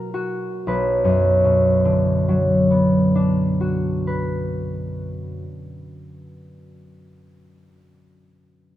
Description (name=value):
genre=classical, solo harp piece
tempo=38 BPM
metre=3/4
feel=rubato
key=B minor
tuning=A4 = 439 Hz
part: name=concert harp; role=solo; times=0.0-6.8 s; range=B1 to E5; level=-18 LUFS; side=equal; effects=none
room=light reverb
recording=close, detailed microphones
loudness=-17 LUFS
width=side -13 dB against mid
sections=0.7-5.4 A section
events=none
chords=0.0 F#7/B; 0.7 Bm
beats=| 0.69 2.28 3.82